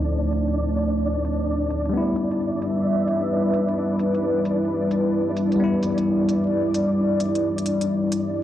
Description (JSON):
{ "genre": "future garage", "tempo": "131 BPM", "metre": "4/4", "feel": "swing 66% on 16ths", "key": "unclear", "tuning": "A4 = 440 Hz", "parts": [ { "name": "barky tine electric piano", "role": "accompaniment", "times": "0.0-8.4 s", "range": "D2 to E4", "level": "-26 LUFS", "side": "left 1 dB", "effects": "medium stereo tremolo, analog delay" }, { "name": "dark analog pad", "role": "sustained chords", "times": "0.0-8.4 s", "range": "G3 to E5", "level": "-22 LUFS", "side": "equal", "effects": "chorus, vintage 12-bit sampler grit" }, { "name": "electronic hi-hat", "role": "drums", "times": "0.0-8.2 s", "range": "none", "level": "-37 LUFS", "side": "right 1 dB", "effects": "overdrive, low-pass filter on hats" }, { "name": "flickering grainy texture", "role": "texture", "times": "0.0-8.4 s", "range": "D4 to D5", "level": "-29 LUFS", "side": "left 1 dB", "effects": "built-in reverb" } ], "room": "light reverb", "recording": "dry, gritty hardware recording, vinyl crackle, low-pass filter", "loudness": "-20 LUFS", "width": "side -12 dB against mid", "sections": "0.0-8.4 A section", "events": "filter sweep on drum 0.0-8.4; filter sweep 0.0-8.4", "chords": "0.0 Dm7; 1.9 Em", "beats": "| 0.10 0.56 1.02 1.48 | 1.93 2.39 2.85 3.31 | 3.77 4.22 4.68 5.14 | 5.60 6.06 6.51 6.97 | 7.43 7.89 8.35" }